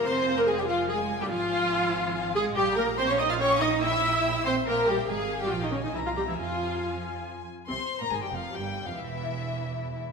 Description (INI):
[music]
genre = quick classical-period movement for string orchestra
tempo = 142 BPM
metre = 3/4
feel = straight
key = F minor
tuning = A4 = 440 Hz
[part]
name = warm chamber violin section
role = melody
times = 0.0-10.0 s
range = E5 to C6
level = -36 LUFS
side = left 7 dB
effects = none
[part]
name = rich chamber violin section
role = second line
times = 0.0-10.0 s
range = E4 to F6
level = -34 LUFS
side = left 4 dB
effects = none
[part]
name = rich studio viola section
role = accompaniment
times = 0.0-10.0 s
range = E3 to F5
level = -27 LUFS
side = equal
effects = none
[part]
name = rich chamber double bass section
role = bass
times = 0.0-10.0 s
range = E1 to F2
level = -36 LUFS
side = right 6 dB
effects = none
[part]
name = warm chamber cello section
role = bass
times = 0.0-10.0 s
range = E2 to F4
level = -33 LUFS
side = right 3 dB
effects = none
[sound]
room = wet concert hall reverb, RT60 2.1 s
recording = minimal, uncompressed stereo recording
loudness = -25 LUFS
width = side -5 dB against mid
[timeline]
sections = 0.0-7.7 A section; 7.7-10.1 A section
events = none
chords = 0.0 Fm; 1.3 Fm/Ab; 2.6 Gm7b5/Bb; 3.8 C7/Bb; 5.1 Fm/Ab; 5.5 Gdim/Bb; 5.9 C7; 6.4 Fm; 7.7 F5; 9.0 N.C.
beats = | 0.05 0.47 0.88 | 1.30 1.72 2.14 | 2.56 2.98 3.39 | 3.81 4.24 4.66 | 5.09 5.51 5.95 | 6.38 6.82 7.25 | 7.69 8.12 8.54 | 8.97 9.39 9.81